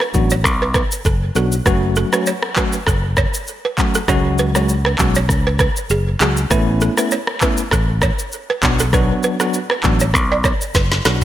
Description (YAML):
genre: afrobeats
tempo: 99 BPM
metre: 4/4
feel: swing 55% on 16ths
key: unclear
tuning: A4 = 440 Hz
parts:
  - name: balafon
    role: riff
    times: 0.0-11.1 s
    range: G#4 to D5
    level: -22 LUFS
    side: right 4 dB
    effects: digital delay
  - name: afro-pop drum kit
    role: drums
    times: 0.0-11.2 s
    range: handclaps, kick drum, rim click, shaker, snare drum, toms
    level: -18 LUFS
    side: equal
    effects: gated reverb
  - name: bell-like tine electric piano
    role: accompaniment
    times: 0.1-11.2 s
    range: F#3 to F#4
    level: -21 LUFS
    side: left 1 dB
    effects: fast stereo tremolo
  - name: fingered electric bass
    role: bass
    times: 0.1-11.2 s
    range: F#1 to C#2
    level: -18 LUFS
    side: equal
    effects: none
room: light reverb, digital ambience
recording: bright 1980s-style digital production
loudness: -14 LUFS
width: side -12 dB against mid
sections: 0.0-11.2 A section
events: drum fill 10.8-11.2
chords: 0.0 Bm; 1.7 F#m; 4.1 C#sus4; 6.5 Aadd9; 8.6 Bm